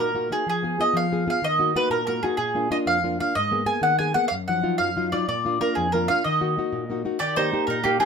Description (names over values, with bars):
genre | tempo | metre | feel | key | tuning
italian folk, Italian serenade | 125 BPM (dotted quarters) | 6/8 | straight | Eb harmonic minor | A4 = 440 Hz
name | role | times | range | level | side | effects
mandolin | melody | 0.0-8.1 s | G4 to Ab5 | -23 LUFS | right 2 dB | none
nylon-string guitar | accompaniment | 0.0-8.1 s | F2 to Ab4 | -26 LUFS | left 3 dB | none
mandolin | second line | 7.2-8.1 s | Bb3 to G4 | -26 LUFS | right 6 dB | none
room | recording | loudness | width
moderate studio reverb, RT60 0.6 s | minimal, uncompressed stereo recording | -21 LUFS | side -6 dB against mid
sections
0.0-7.2 A section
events
none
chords
0.5 Fdim; 1.4 Ebm; 2.4 Bb; 3.4 Abmadd9; 4.3 Ebmadd9/Gb; 5.3 Bb; 6.2 Ebm; 7.2 Eb